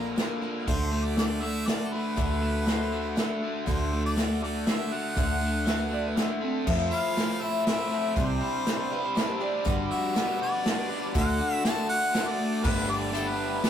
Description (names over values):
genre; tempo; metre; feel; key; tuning
folk rock and heartland rock; 120 BPM; 3/4; straight; unclear; A4 = 440 Hz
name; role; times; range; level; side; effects
bright harmonica; melody; 0.0-13.7 s; A4 to A5; -34 LUFS; right 1 dB; none
picked twelve-string acoustic guitar; accompaniment; 0.0-13.7 s; G2 to B4; -32 LUFS; left 4 dB; none
overdriven electric guitar; riff; 0.0-13.7 s; G2 to G4; -30 LUFS; equal; none
fingered electric bass; bass; 0.0-13.6 s; G1 to F2; -31 LUFS; right 1 dB; none
natural country drum kit; drums; 0.2-13.7 s; crash cymbal, hi-hat, kick drum, snare drum; -29 LUFS; right 1 dB; none
clean lap steel guitar; second line; 2.7-6.7, 8.9-9.8 s; C4 to E5; -35 LUFS; right 6 dB; none
accordion; sustained chords; 6.7-13.7 s; A4 to E6; -40 LUFS; right 3 dB; none
dark grand piano; accompaniment; 12.6-13.7 s; G4 to B5; -44 LUFS; right 3 dB; none
room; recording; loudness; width
wet small room reverb, RT60 0.5 s; rough rehearsal-room recording, warm saturation, faint mains hum; -25 LUFS; side -9 dB against mid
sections
0.0-6.7 A section; 6.7-12.6 B section; 12.6-13.7 C section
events
none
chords
0.0 Bb; 0.7 D; 6.7 Fmaj7; 8.2 Cadd9; 9.7 Gmaj7; 11.2 D; 12.6 Gadd9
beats
0.17 | 0.67 1.17 1.67 | 2.17 2.67 3.17 | 3.67 4.17 4.67 | 5.17 5.67 6.17 | 6.67 7.17 7.67 | 8.16 8.66 9.16 | 9.66 10.16 10.65 | 11.15 11.65 12.15 | 12.64 13.14 13.64